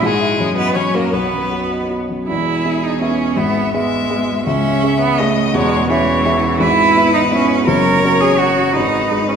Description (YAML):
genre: quick classical-period movement for piano trio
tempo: 166 BPM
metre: 3/4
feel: rubato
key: E major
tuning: A4 = 440 Hz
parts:
  - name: rich violin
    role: melody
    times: 0.0-9.4 s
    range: G#4 to E5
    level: -21 LUFS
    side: left 5 dB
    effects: none
  - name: clear cello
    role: second line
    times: 0.0-9.3 s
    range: E3 to A#4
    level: -17 LUFS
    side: right 5 dB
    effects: none
  - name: dark baby grand piano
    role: accompaniment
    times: 0.0-9.4 s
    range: E1 to E5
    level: -17 LUFS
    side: left 1 dB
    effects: none
room: wet church reverb, RT60 3.1 s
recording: recorded in a church or concert hall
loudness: -13 LUFS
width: side -7 dB against mid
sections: 0.0-2.3 A section; 2.3-9.4 B section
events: none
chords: 0.0 E/G#; 0.4 B/F#; 0.8 F#; 1.1 B; 2.3 E; 3.4 E/G#; 4.5 C#m; 5.5 C#m/E; 6.6 E/G#; 7.7 F#; 8.7 G#m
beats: | 0.03 0.39 0.76 | 1.13 1.52 1.91 | 2.29 2.65 3.01 | 3.38 3.74 4.10 | 4.46 4.82 5.18 | 5.54 5.90 6.26 | 6.61 6.96 7.32 | 7.67 8.03 8.38 | 8.74 9.10